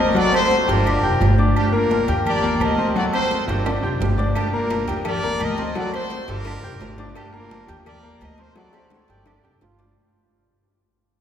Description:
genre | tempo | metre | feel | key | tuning
latin, salsa | 171 BPM | 4/4 | straight | G minor | A4 = 439 Hz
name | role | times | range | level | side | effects
clear horn section | melody | 0.0-9.8 s | Bb3 to Eb5 | -24 LUFS | equal | none
bright grand piano | accompaniment | 0.0-9.9 s | F#3 to G6 | -23 LUFS | left 2 dB | none
upright bass | bass | 0.0-9.9 s | F1 to Eb2 | -23 LUFS | equal | none
agogo bells and timbales | percussion | 0.2-9.9 s | none | -28 LUFS | right 4 dB | none
congas | percussion | 0.2-10.0 s | none | -28 LUFS | left 1 dB | none
claves | percussion | 0.3-9.4 s | none | -38 LUFS | right 1 dB | none
cowbell and bongos | percussion | 4.4-10.0 s | none | -41 LUFS | left 6 dB | none
bright trombone section | second line | 9.3-9.9 s | none | barely audible | none | none
room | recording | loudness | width
wet cathedral reverb, RT60 4.5 s | recorded in a church or concert hall | -18 LUFS | side -9 dB against mid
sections
0.0-10.0 A section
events
fade-out 0.0-10.0; drum fill 3.7-4.4, 8.6-10.0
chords
0.2 D7; 0.9 Gm7; 2.3 Ebmaj7; 3.0 D7; 3.7 Gm7; 5.1 Ebmaj7; 5.8 D7; 6.5 Gm7; 7.9 Ebmaj7; 8.6 D7; 9.3 G5

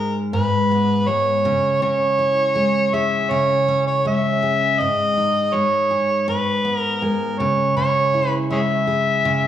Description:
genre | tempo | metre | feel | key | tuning
pop | 81 BPM | 4/4 | straight | unclear | A4 = 435 Hz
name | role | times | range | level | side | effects
overdriven harmonica | melody | 0.0-9.5 s | G#4 to E5 | -18 LUFS | equal | none
picked steel-string acoustic guitar | accompaniment | 0.0-9.5 s | G#2 to G#4 | -22 LUFS | right 1 dB | none
room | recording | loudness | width
wet large studio reverb, RT60 1.3 s | band playing live in one room | -17 LUFS | side -10 dB against mid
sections
0.0-9.5 A section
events
none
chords
0.0 G#m; 1.4 C#m; 4.8 G#m; 7.4 C#m

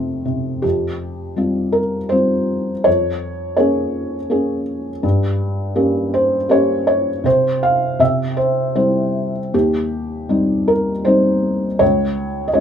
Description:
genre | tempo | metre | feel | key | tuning
classical, lyrical solo piano | 81 BPM | 3/4 | rubato | F minor | A4 = 442 Hz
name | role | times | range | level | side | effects
felt-muted upright piano | solo | 0.0-12.6 s | Db2 to F5 | -16 LUFS | equal | none
room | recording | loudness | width
light reverb | none | -16 LUFS | side -8 dB against mid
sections
0.6-12.6 A section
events
none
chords
0.0 F; 0.6 Fsus2; 2.9 Bbm7/F; 5.0 Gdim; 7.3 N.C.; 8.0 C; 9.5 Eb6; 11.8 N.C.

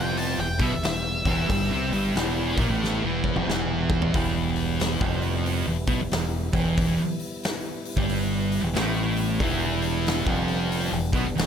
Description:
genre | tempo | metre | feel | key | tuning
stoner and doom metal | 91 BPM | 4/4 | swing 63% on 8ths | E phrygian | A4 = 440 Hz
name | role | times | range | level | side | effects
octave-fuzz lead guitar | melody | 0.0-2.6 s | E5 to A5 | -31 LUFS | equal | wah, distortion, tape echo
tonewheel organ | sustained chords | 0.0-11.5 s | G3 to E4 | -37 LUFS | left 2 dB | slow rotary speaker
thick fuzz guitar | riff | 0.0-11.5 s | E2 to C4 | -29 LUFS | left 9 dB | distortion
thick fuzz guitar | riff | 0.0-11.5 s | E2 to C4 | -28 LUFS | right 10 dB | distortion
tight distorted guitar | riff | 0.0-4.1, 9.4-11.5 s | E2 to C4 | -32 LUFS | left 1 dB | distortion
growling fingered electric bass | bass | 0.0-11.5 s | E1 to C2 | -29 LUFS | equal | overdrive, tube saturation
big rock drum kit | drums | 0.2-11.5 s | hi-hat, kick drum, snare drum, toms | -29 LUFS | left 1 dB | none
room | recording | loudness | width
small room ambience | none | -22 LUFS | side -8 dB against mid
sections
0.0-4.1 A section; 4.1-11.5 B section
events
lead electric guitar solo 0.0-4.1; drum fill 2.8-4.1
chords
0.0 Em

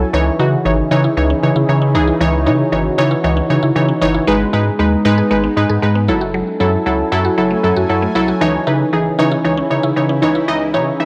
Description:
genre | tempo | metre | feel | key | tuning
pop | 116 BPM | 4/4 | straight | C# minor | A4 = 439 Hz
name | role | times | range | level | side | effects
glassy wavetable pluck | accompaniment | 0.0-11.1 s | E3 to E5 | -18 LUFS | equal | chorus
sweeping resonant pad | sustained chords | 0.0-11.1 s | C#3 to G#5 | -25 LUFS | equal | chorus
warm sub bass | bass | 0.0-11.1 s | F#1 to C#3 | -21 LUFS | equal | none
mallet-like synth pluck | arpeggios | 0.1-11.1 s | E3 to G#4 | -24 LUFS | equal | chorus, analog delay
room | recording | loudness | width
light reverb | dry, gritty hardware recording, high-pass filter | -15 LUFS | mono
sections
0.1-11.1 A section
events
build-up 0.1-11.1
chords
0.1 C#madd9; 4.3 G#m; 6.1 F#m7; 8.4 C#madd9

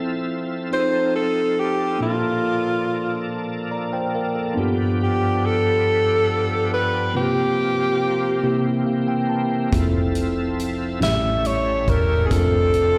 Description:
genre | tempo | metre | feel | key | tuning
slow gospel | 47 BPM (dotted quarters) | 6/8 | straight | F major | A4 = 439 Hz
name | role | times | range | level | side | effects
tine electric piano | accompaniment | 0.0-13.0 s | G2 to Bb5 | -25 LUFS | equal | slapback echo
bright tonewheel organ | sustained chords | 0.0-13.0 s | E3 to E5 | -31 LUFS | equal | slow rotary speaker, overdrive, chorus vibrato
clear alto saxophone | melody | 0.7-13.0 s | F4 to E5 | -23 LUFS | equal | slapback echo
hollow-body short-scale fingered electric bass | bass | 9.7-13.0 s | E1 to A1 | -25 LUFS | equal | none
natural country drum kit | drums | 9.7-12.9 s | hi-hat, kick drum, snare drum | -27 LUFS | equal | none
room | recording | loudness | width
light reverb, small room ambience | live gig heard through the venue's PA, recital hall reverb | -21 LUFS | mono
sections
0.0-13.0 A section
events
tine electric piano fill 3.3-4.6, 8.4-9.7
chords
0.0 Fmaj7; 0.7 F7; 2.0 Bbmaj7; 4.6 G7; 7.1 C7sus4; 8.4 C7; 9.7 Fmaj7; 11.0 A7; 12.3 Dm7/F

